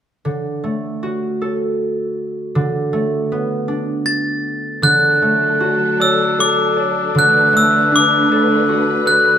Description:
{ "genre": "children's music, lullaby", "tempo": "78 BPM", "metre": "3/4", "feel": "straight", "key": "D major pentatonic", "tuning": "A4 = 440 Hz", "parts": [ { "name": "concert harp", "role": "accompaniment", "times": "0.2-9.4 s", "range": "D3 to D5", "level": "-18 LUFS", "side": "right 1 dB", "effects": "none" }, { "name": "glockenspiel with brass mallets", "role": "melody", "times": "4.1-9.4 s", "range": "D6 to A6", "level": "-14 LUFS", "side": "left 1 dB", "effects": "none" }, { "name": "clear studio string section", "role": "sustained chords", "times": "4.8-9.4 s", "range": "D3 to B4", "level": "-22 LUFS", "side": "left 1 dB", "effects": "none" } ], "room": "moderate recital hall reverb, RT60 1.4 s", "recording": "minimal, uncompressed stereo recording", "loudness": "-14 LUFS", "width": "side -9 dB against mid", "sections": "0.2-4.8 A section; 4.8-9.4 B section", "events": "none", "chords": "0.2 D; 2.5 Bm7/D" }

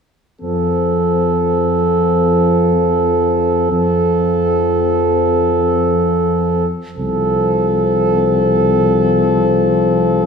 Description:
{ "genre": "classical, brass quintet", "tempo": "free time", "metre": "none", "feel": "none", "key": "F major", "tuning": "A4 = 435 Hz", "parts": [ { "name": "clear flugelhorn", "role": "second line", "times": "0.4-10.2 s", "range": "A4", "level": "-16 LUFS", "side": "right 3 dB", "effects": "none" }, { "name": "mellow French horn", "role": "accompaniment", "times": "0.4-10.2 s", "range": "C4", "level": "-20 LUFS", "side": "left 9 dB", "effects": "none" }, { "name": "mellow trombone", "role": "accompaniment", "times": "0.4-10.3 s", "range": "F3", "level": "-20 LUFS", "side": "left 2 dB", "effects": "none" }, { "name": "mellow tuba", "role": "bass", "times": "0.4-10.2 s", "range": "C2 to F2", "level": "-20 LUFS", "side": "right 2 dB", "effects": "none" } ], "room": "wet recital hall reverb, RT60 1.4 s", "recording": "recorded in a church or concert hall", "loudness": "-12 LUFS", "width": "side -6 dB against mid", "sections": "0.4-10.3 A section", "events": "none", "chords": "0.4 F; 7.0 F/C" }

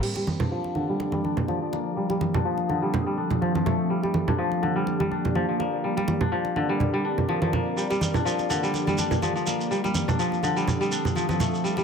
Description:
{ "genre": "afro house", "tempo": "124 BPM", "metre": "4/4", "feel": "swing 55% on 16ths", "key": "G minor", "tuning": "A4 = 441 Hz", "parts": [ { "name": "ethereal airy pad", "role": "sustained chords", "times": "0.8-11.8 s", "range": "F3 to Eb6", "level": "-29 LUFS", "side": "equal", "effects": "ensemble chorus, built-in reverb" }, { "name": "kora", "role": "arpeggios", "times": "0.0-11.8 s", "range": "D3 to D4", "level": "-26 LUFS", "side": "left 1 dB", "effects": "low-pass filter, tape echo" }, { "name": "congas", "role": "percussion", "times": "0.2-11.8 s", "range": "none", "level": "-28 LUFS", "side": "right 2 dB", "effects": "none" }, { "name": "shekere", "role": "percussion", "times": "7.8-11.8 s", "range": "none", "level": "-34 LUFS", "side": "right 5 dB", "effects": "none" }, { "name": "riser", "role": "sound effects", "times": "11.6-11.8 s", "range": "none", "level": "barely audible", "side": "none", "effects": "none" } ], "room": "light reverb", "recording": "none", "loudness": "-23 LUFS", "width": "side -6 dB against mid", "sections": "0.0-11.8 A section", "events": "filter sweep on kora 0.0-11.8", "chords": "0.0 Gm7; 2.0 F7; 3.9 Gm7; 5.8 Csus2; 7.8 Gm7; 9.7 F7" }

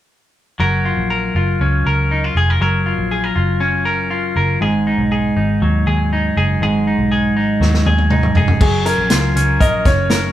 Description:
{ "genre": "jangly indie pop", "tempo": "120 BPM", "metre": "4/4", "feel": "straight", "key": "F# major", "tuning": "A4 = 440 Hz", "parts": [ { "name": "semi-hollow electric guitar", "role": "arpeggios", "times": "0.6-10.3 s", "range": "G#2 to A#4", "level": "-17 LUFS", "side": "equal", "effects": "none" }, { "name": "vintage muted picked electric bass", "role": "bass", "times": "0.6-10.3 s", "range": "E#1 to D#2", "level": "-18 LUFS", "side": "equal", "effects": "none" }, { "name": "vintage drum kit", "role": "drums", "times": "7.6-10.2 s", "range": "crash cymbal, hi-hat, kick drum, snare drum, toms", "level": "-16 LUFS", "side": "equal", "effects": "none" }, { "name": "clear upright piano", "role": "melody", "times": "8.6-10.3 s", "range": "G#4 to D#5", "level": "-20 LUFS", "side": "left 1 dB", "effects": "none" } ], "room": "moderate stone room reverb, RT60 1.0 s", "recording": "band playing live in one room", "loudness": "-14 LUFS", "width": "side -12 dB against mid", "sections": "0.6-8.6 A section; 8.6-10.3 B section", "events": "drum fill 7.6-8.6", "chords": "0.6 F#maj7; 4.6 G#m7; 8.6 F#maj7" }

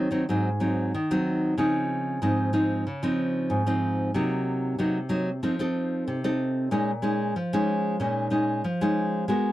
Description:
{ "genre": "samba", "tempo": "94 BPM", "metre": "4/4", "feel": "straight", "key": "unclear", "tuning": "A4 = 440 Hz", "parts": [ { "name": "nylon-string guitar", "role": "solo", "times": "0.0-9.5 s", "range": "Ab2 to Bb4", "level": "-24 LUFS", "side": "equal", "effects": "none" } ], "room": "light reverb", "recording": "dry, close 1970s-style studio recording", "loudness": "-24 LUFS", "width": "side -15 dB against mid", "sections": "0.0-9.5 A section", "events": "none", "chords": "0.0 Ab7; 1.6 Dbmaj9; 4.1 Cm7b5; 5.4 F7; 6.7 Bbm7" }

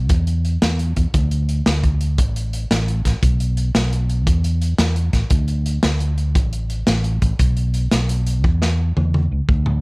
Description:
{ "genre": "highlife guitar band", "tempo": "115 BPM (dotted quarters)", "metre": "12/8", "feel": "straight", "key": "unclear", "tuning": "A4 = 439 Hz", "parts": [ { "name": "fingered electric bass", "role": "bass", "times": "0.0-9.8 s", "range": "A1 to E2", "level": "-18 LUFS", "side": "equal", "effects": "none" }, { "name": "crunchy breakbeat drum kit", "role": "drums", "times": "0.1-9.7 s", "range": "hi-hat, kick drum, snare drum, toms", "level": "-19 LUFS", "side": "equal", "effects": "none" } ], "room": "light reverb", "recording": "none", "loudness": "-16 LUFS", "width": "side -30 dB against mid", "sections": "0.0-9.8 A section", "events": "drum fill 8.4-9.8", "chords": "none" }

